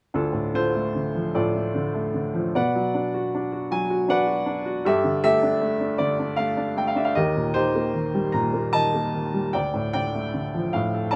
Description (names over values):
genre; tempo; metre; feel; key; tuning
classical, lyrical solo piano; 50 BPM (dotted quarters); 6/8; rubato; unclear; A4 = 438 Hz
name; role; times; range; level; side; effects
warm upright piano; solo; 0.1-11.2 s; D2 to Bb5; -24 LUFS; equal; none
room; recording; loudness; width
light reverb; close, detailed microphones; -24 LUFS; mono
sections
0.1-11.2 A section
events
none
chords
0.1 Dm; 2.5 Bm; 4.8 Gsus2; 7.2 Eb; 9.5 Dm